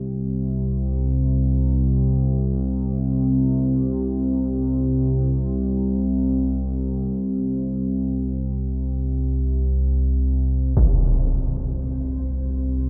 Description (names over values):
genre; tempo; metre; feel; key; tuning
dark ambient drone; free time; none; none; unclear; A4 = 440 Hz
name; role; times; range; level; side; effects
analog drone; drone; 0.0-12.9 s; C2 to C3; -22 LUFS; equal; chorus
impact; percussion; 10.8-11.0 s; none; -25 LUFS; equal; low-pass filter on sfx
bubbling stepped-filter texture; texture; 11.1-12.9 s; C4 to C5; -47 LUFS; equal; chorus, built-in reverb
room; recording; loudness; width
wet cathedral reverb, RT60 5.7 s; dark, warm production; -22 LUFS; mono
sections
0.0-10.8 A section; 10.8-12.9 A section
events
none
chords
none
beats
free time